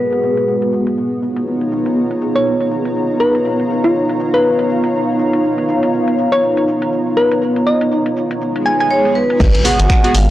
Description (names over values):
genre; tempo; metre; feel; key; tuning
deep house; 121 BPM; 4/4; swing 59% on 16ths; unclear; A4 = 436 Hz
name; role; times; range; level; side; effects
vibraphone with hard mallets; melody; 0.0-0.7, 8.9-10.3 s; B4 to F#5; -17 LUFS; right 1 dB; analog delay
warm analog pad; sustained chords; 0.0-10.3 s; G#3 to A#5; -17 LUFS; equal; chorus, sidechain pumping
granular cloud pad; texture; 0.0-10.3 s; B3 to A#5; -21 LUFS; left 1 dB; built-in reverb, sidechain pumping
house drum kit; drums; 0.1-10.3 s; crash cymbal, finger snaps, hi-hat, shaker; -26 LUFS; left 1 dB; low-pass filter on perc, vintage 12-bit sampler grit, low-pass filter on hats, low-pass filter on cymbals, low-pass filter on snare
thumb-piano-like synth pluck; melody; 2.4-9.2 s; E#4 to G#5; -17 LUFS; equal; chorus, tape echo
swell and impact; sound effects; 8.5-10.3 s; none; -21 LUFS; equal; none
round analog bass; bass; 9.4-10.3 s; G#1; -13 LUFS; equal; sidechain pumping
electronic kick drum; drums; 9.4-10.0 s; none; -13 LUFS; equal; vintage 12-bit sampler grit
warm analog keys; stabs; 9.6-10.1 s; B3 to G#4; -18 LUFS; right 1 dB; chorus, sidechain pumping
room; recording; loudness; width
light reverb, digital ambience; dry, gritty hardware recording, cassette tape; -13 LUFS; side -14 dB against mid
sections
0.0-9.4 A section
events
swell 8.5-9.4; impact 9.4-10.3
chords
0.0 G#m7; 1.2 C#13; 9.4 G#m7